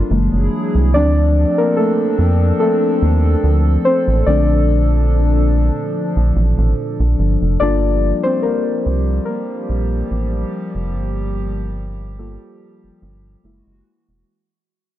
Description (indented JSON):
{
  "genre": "R&B",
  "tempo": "72 BPM",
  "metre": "4/4",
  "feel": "swing 54% on 16ths",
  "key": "unclear",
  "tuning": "A4 = 440 Hz",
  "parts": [
    { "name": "muted felt-like synth keys", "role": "accompaniment", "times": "0.0-14.3 s", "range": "D3 to D5", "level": "-18 LUFS", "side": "left 2 dB", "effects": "chorus" },
    { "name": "hollow soft pad", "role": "sustained chords", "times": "0.0-14.3 s", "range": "Bb2 to A4", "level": "-23 LUFS", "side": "left 1 dB", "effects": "chorus" },
    { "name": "rubbery square bass", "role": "bass", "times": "0.0-14.2 s", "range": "E1 to F2", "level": "-15 LUFS", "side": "equal", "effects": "none" }
  ],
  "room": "little or no reverb",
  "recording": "none",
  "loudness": "-14 LUFS",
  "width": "side -13 dB against mid",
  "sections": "0.0-7.6 A section; 7.6-14.3 B section",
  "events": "synth keys solo 0.0-7.6, 7.6-14.3; fade-out 7.6-14.3",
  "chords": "0.1 F#9; 0.9 Dm7; 4.3 Gm9; 13.4 F#9"
}